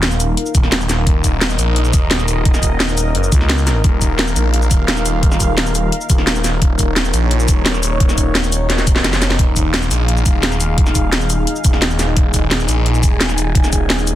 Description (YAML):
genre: dark technical drum and bass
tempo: 173 BPM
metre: 4/4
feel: straight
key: unclear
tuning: A4 = 440 Hz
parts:
  - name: dark analog pad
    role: sustained chords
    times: 0.0-14.2 s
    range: Eb4 to Ab5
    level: -23 LUFS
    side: left 2 dB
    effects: chorus, sidechain pumping
  - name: phased detuned saw bass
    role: bass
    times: 0.0-14.2 s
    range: Eb1 to Bb1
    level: -17 LUFS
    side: equal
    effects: phaser
  - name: drum and bass drum kit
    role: drums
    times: 0.0-14.1 s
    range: hi-hat, shaker, snare drum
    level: -18 LUFS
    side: equal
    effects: none
  - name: electronic kick drum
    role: drums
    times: 0.5-13.8 s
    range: none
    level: -14 LUFS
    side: equal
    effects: none
  - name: growling FM bass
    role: bass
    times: 3.3-3.8 s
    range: Db2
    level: -15 LUFS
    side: equal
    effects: none
room: digital ambience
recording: dense, heavily limited modern master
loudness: -13 LUFS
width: side -13 dB against mid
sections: 0.0-14.2 A section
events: drum fill 8.7-9.4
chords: 0.0 Eb5